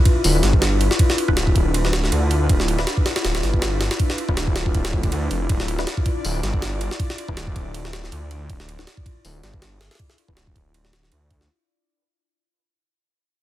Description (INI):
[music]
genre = drum and bass, jungle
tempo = 160 BPM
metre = 4/4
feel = swing 55% on 16ths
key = D dorian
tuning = A4 = 441 Hz
[part]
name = airy breathy pad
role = sustained chords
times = 0.0-11.5 s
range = D4 to D5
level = -27 LUFS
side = left 2 dB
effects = chorus, vintage 12-bit sampler grit
[part]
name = jungle sampler-style drum kit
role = drums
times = 0.1-11.5 s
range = hi-hat, kick drum, ride cymbal, snare drum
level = -21 LUFS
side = equal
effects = none
[part]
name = detuned saw bass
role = bass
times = 0.2-11.5 s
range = D1 to D2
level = -23 LUFS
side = equal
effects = none
[part]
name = filtered dub chord stab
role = stabs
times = 1.3-10.3 s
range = D4 to B4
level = -32 LUFS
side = left 3 dB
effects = phaser, wide subtle chorus, cassette tape, dub echo
[sound]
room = little or no reverb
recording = dense, heavily limited modern master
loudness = -18 LUFS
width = side -14 dB against mid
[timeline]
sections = 0.0-11.5 A section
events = fade-out 0.0-11.5; filter sweep on synth stab 0.0-11.5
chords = 0.0 Dm69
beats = 0.24 0.62 | 0.99 1.37 1.74 2.12 | 2.49 2.87 3.24 3.62 | 3.99 4.37 4.74 5.12 | 5.49 5.87 6.24 6.62 | 6.99 7.37 7.74 8.12 | 8.49 8.87 9.24 9.62 | 9.99 10.37 10.74 11.12